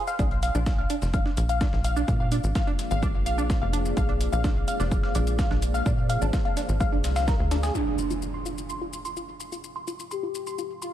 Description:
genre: melodic techno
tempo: 127 BPM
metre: 4/4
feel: straight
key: unclear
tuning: A4 = 439 Hz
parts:
  - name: tight sequenced synth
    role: arpeggios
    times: 0.0-10.9 s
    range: D4 to C6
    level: -30 LUFS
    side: equal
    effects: chorus, sidechain pumping, dub echo
  - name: electronic shaker and hi-hat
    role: drums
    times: 0.1-10.9 s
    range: none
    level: -40 LUFS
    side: left 3 dB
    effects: none
  - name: deep dark ambient pad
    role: sustained chords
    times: 1.9-10.9 s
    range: Ab3 to D5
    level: -35 LUFS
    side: equal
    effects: chorus, built-in reverb, sidechain pumping
  - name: tight sequencer bass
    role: bass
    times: 0.2-7.7 s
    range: F1 to Bb2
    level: -26 LUFS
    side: equal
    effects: tube saturation, sidechain pumping
  - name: breakbeat sampler-style drum kit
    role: drums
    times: 0.2-7.7 s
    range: hi-hat, snare drum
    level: -43 LUFS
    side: left 1 dB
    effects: sidechain pumping on hats, high-pass filter on hats, high-pass filter on snare, analog delay
  - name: electronic kick drum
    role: drums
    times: 0.2-7.4 s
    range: none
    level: -26 LUFS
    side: equal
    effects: none
  - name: analog synth brass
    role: melody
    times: 7.7-10.9 s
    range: D4 to G4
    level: -32 LUFS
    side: right 2 dB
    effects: chorus, sidechain pumping, analog delay
  - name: impact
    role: sound effects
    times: 7.7-9.6 s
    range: none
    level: -34 LUFS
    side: equal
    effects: none
room: light reverb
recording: echo-heavy mix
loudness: -23 LUFS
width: side -12 dB against mid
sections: 0.0-7.8 A section; 7.8-10.9 B section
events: impact 7.8-9.6; filter sweep on analog polysynth 7.8-10.9; filter sweep on ambient pad 7.8-10.9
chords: 0.2 Bb7; 7.8 Fm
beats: | 0.19 0.66 1.14 1.61 | 2.08 2.55 3.02 3.50 | 3.97 4.44 4.92 5.39 | 5.86 6.33 6.80 7.28 | 7.75 8.22 8.70 9.17 | 9.64 10.11 10.59

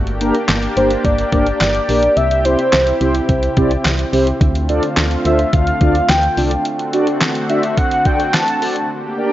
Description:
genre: synth-pop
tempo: 107 BPM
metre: 4/4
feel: straight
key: D minor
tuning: A4 = 442 Hz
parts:
  - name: lush unison pad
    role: sustained chords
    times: 0.0-9.3 s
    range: C3 to G4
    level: -22 LUFS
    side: equal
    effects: chorus
  - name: solid FM bass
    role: bass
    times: 0.0-6.6 s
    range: G1 to D2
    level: -19 LUFS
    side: equal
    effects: none
  - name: clean 12-bit digital drum machine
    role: drums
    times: 0.1-8.9 s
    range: handclaps, hi-hat, kick drum, snare drum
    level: -18 LUFS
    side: equal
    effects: none
  - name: mellow synth brass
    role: accompaniment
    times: 0.2-9.3 s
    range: Bb3 to D5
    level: -20 LUFS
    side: equal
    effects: chorus
  - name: warm velvety synth lead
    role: melody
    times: 0.8-8.9 s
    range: C5 to A5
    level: -18 LUFS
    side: equal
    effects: chorus, tape echo
room: moderate concert hall reverb, RT60 1.8 s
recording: worn, warbling old tape, cassette tape, warbly pitch drift, nothing above 7.6 kHz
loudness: -13 LUFS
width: side -14 dB against mid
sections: 0.0-9.3 A section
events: none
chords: 0.0 Gm; 2.2 C; 4.4 Dm7; 6.7 D7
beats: 0.49 1.05 1.61 | 2.17 2.73 3.29 3.85 | 4.41 4.97 5.53 6.09 | 6.65 7.21 7.78 8.34 | 8.90

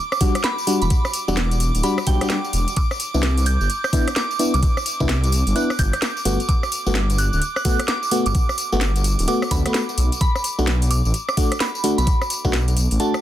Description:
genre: UK garage, two-step garage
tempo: 129 BPM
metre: 4/4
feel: swing 63% on 16ths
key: E minor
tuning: A4 = 440 Hz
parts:
  - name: airy breathy pad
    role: sustained chords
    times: 0.0-13.2 s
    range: D6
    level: -31 LUFS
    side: right 2 dB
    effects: chorus, sidechain pumping
  - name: soft synth bell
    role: melody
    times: 0.1-13.2 s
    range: G5 to G6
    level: -27 LUFS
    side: right 3 dB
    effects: chorus, digital delay
  - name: garage drum kit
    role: drums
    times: 0.1-13.2 s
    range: hi-hat, rim click, snare drum, tambourine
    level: -25 LUFS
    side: left 1 dB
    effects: studio ambience
  - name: FM electric piano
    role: stabs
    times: 0.2-13.1 s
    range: G3 to F#4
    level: -24 LUFS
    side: left 1 dB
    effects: chorus, ping-pong delay
  - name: electronic kick drum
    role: drums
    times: 0.2-12.5 s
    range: none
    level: -20 LUFS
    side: equal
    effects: studio ambience
  - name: dark detuned saw bass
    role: bass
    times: 0.8-13.0 s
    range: D1 to D2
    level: -20 LUFS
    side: equal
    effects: none
room: light reverb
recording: dense, heavily limited modern master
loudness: -18 LUFS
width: side -12 dB against mid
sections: 0.0-13.2 A section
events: none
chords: 0.0 Em9; 2.8 Cmaj9; 6.3 Gmaj9; 10.0 Bm7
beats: 0.44 | 0.91 1.37 1.83 2.30 | 2.77 3.23 3.70 4.16 | 4.63 5.09 5.56 6.02 | 6.49 6.95 7.42 7.88 | 8.35 8.81 9.28 9.74 | 10.21 10.67 11.14 11.60 | 12.07 12.53 13.00

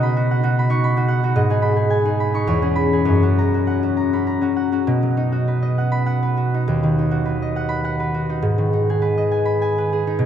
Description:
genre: classical, solo harp piece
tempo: 98-113 BPM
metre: 3/4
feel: rubato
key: B major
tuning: A4 = 442 Hz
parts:
  - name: concert harp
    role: solo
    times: 0.0-10.3 s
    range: D#2 to C#6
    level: -17 LUFS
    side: equal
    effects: none
room: wet cathedral reverb, RT60 5.9 s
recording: in a vast, echoing space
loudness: -17 LUFS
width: side -9 dB against mid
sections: 0.0-4.9 A section; 4.9-10.3 B section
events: none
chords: 0.0 B; 1.4 G#m; 2.5 C#m7/E; 3.1 F#; 4.9 B; 6.7 B/D#; 8.5 G#m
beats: 0.29 0.83 | 1.37 1.92 2.49 | 3.08 3.68 4.27 | 4.87 5.47 6.09 | 6.69 7.28 7.87 | 8.46 9.04 9.62 | 10.21

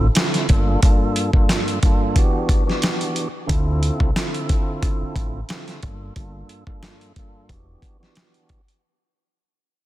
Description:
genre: hip hop, boom-bap hip-hop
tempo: 90 BPM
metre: 4/4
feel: swing 56% on 16ths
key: unclear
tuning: A4 = 440 Hz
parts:
  - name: tonewheel organ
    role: accompaniment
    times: 0.0-8.6 s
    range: G2 to A4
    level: -25 LUFS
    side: right 1 dB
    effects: slow rotary speaker, cassette tape, high-pass filter, low-pass filter
  - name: deep dub fingered electric bass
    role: bass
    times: 0.0-7.7 s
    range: E1 to D2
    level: -21 LUFS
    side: equal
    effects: none
  - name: dusty soul sampler-style drum kit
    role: drums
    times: 0.2-8.8 s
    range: handclaps, hi-hat, kick drum, snare drum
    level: -19 LUFS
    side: equal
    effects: none
room: light reverb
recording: dense, heavily limited modern master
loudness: -17 LUFS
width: side -15 dB against mid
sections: 0.0-8.8 A section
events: fade-out 0.0-8.8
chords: 0.5 Gm7; 2.2 Em7; 3.5 Dm7; 5.8 Gm7; 7.5 Em7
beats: 0.16 | 0.83 1.50 2.16 2.83 | 3.50 4.16 4.83 5.50 | 6.16 6.83 7.50 8.16

